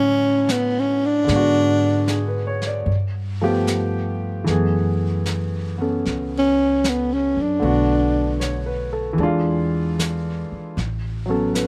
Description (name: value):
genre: jazz ballad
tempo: 76 BPM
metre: 4/4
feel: swing 68% on 8ths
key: unclear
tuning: A4 = 438 Hz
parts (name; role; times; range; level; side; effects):
- breathy tenor saxophone; melody; 0.0-8.6 s; B3 to D4; -20 LUFS; equal; slapback echo
- warm concert grand piano; accompaniment; 0.0-11.7 s; D3 to D5; -25 LUFS; equal; none
- upright bass; bass; 0.0-11.7 s; A1 to A2; -27 LUFS; equal; none
- vintage brush drum kit; drums; 0.5-11.7 s; brushed snare drum, hi-hat, snare drum; -32 LUFS; equal; none
room: little or no reverb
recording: none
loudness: -21 LUFS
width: mono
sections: 0.0-11.7 A section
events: tenor saxophone solo 0.0-11.7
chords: 0.0 Dmaj9; 1.3 G#m7b5; 2.9 G9; 4.5 F#m11; 7.6 Bm7; 9.2 E7b9; 10.8 A69